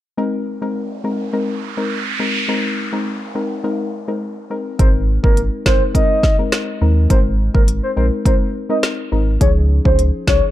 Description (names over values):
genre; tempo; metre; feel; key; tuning
dancehall; 104 BPM; 4/4; straight; Ab major; A4 = 445 Hz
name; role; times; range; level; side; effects
soft round pluck; accompaniment; 0.2-10.5 s; F3 to Bb4; -22 LUFS; left 2 dB; chorus
noise sweep; sound effects; 0.9-4.8 s; none; -25 LUFS; right 2 dB; none
soft octave-layered synth lead; melody; 4.8-10.4 s; Bb4 to Eb5; -21 LUFS; left 1 dB; chorus, phaser, ping-pong delay
warm sub bass; bass; 4.8-10.4 s; G1 to Eb2; -16 LUFS; equal; none
afro-pop drum kit; drums; 4.8-10.4 s; hi-hat, kick drum, rim click, snare drum; -16 LUFS; equal; none
room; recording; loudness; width
digital ambience; dark, warm production; -15 LUFS; side -13 dB against mid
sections
0.2-4.8 A section; 4.8-10.5 B section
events
noise sweep 0.9-4.8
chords
0.2 Abadd9; 9.4 Dbadd9